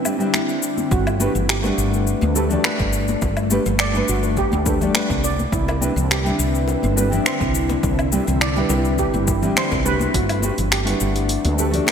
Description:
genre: sunset chillout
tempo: 104 BPM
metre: 4/4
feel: straight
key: G major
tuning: A4 = 440 Hz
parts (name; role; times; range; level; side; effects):
- nylon-string guitar; accompaniment; 0.0-11.9 s; G3 to F#5; -23 LUFS; left 1 dB; auto-pan, vintage 12-bit sampler grit, ping-pong delay, shimmer reverb
- ethereal airy pad; sustained chords; 0.0-11.9 s; D3 to E4; -26 LUFS; right 1 dB; ensemble chorus, built-in reverb, shimmer reverb
- deep house drum kit; drums; 0.1-11.9 s; cabasa, finger snaps, hi-hat, woodblock; -24 LUFS; left 2 dB; overdrive
- congas and bongos; percussion; 0.3-11.9 s; none; -30 LUFS; left 2 dB; none
- steel pan; arpeggios; 0.9-11.9 s; E4 to D5; -27 LUFS; right 5 dB; ping-pong delay, shimmer reverb
- woody fretless electric bass; bass; 0.9-11.8 s; G1 to D2; -22 LUFS; equal; ensemble chorus
- electronic kick drum; drums; 0.9-10.3 s; none; -25 LUFS; equal; overdrive
room: moderate lush hall reverb, RT60 2.8 s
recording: bright 1980s-style digital production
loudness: -17 LUFS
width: side -7 dB against mid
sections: 0.9-11.9 A section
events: break 0.0-0.9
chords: 0.0 Cadd9; 0.9 Gmaj9; 5.2 Cmaj9; 10.1 Gmaj9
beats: 0.34 | 0.91 1.49 2.07 2.64 | 3.22 3.80 4.37 4.95 | 5.53 6.10 6.68 7.26 | 7.83 8.41 8.99 9.57 | 10.14 10.72 11.30 11.87

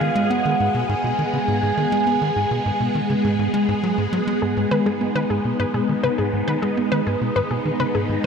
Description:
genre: ambient, sequencer-driven space music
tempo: 102 BPM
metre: 4/4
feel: straight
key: G# minor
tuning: A4 = 437 Hz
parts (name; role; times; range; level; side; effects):
- soft octave-layered synth lead; melody; 0.0-3.8 s; E#5 to G#5; -25 LUFS; right 1 dB; chorus, phaser, shimmer reverb, tape echo
- phased string machine; sustained chords; 0.0-8.3 s; G#3 to G#4; -22 LUFS; equal; ensemble chorus, phaser, shimmer reverb
- tight sequencer bass; riff; 0.0-8.3 s; G#2 to B3; -24 LUFS; equal; tape echo
- wide unison pluck; arpeggios; 4.4-8.3 s; G#4 to B4; -25 LUFS; left 2 dB; auto-pan, shimmer reverb, tape echo
room: wet huge ambient reverb, RT60 7.8 s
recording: none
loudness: -18 LUFS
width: side -6 dB against mid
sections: 0.0-8.3 A section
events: none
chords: 0.0 G#m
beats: 0.30 0.89 1.48 | 2.07 2.65 3.24 3.83 | 4.42 5.01 5.59 6.18 | 6.77 7.36 7.95

